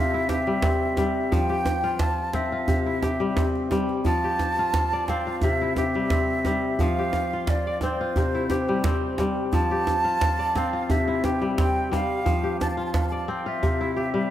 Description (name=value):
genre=west african traditional, West African string and xylophone music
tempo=88 BPM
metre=4/4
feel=straight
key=F major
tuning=A4 = 440 Hz
part: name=breathy jazz flute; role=melody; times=0.0-14.3 s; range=C5 to A5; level=-27 LUFS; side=right 1 dB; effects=tape echo
part: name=kora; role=arpeggios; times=0.0-14.3 s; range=C3 to D5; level=-26 LUFS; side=left 2 dB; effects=tape echo
part: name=djembe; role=percussion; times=0.3-14.1 s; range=none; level=-26 LUFS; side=right 1 dB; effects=none
room=wet plate reverb, RT60 3.2 s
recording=dreamy mix soaked in reverb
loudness=-22 LUFS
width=side -12 dB against mid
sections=0.0-14.3 A section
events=none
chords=0.0 C; 1.3 F5; 2.7 C; 4.1 F; 5.4 C; 6.8 F5; 8.2 C; 9.5 F; 10.9 C; 12.3 F5; 13.6 C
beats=0.63 | 1.32 2.00 2.69 3.37 | 4.05 4.74 5.42 6.11 | 6.79 7.47 8.15 8.84 | 9.52 10.20 10.89 11.57 | 12.25 12.94 13.62 14.30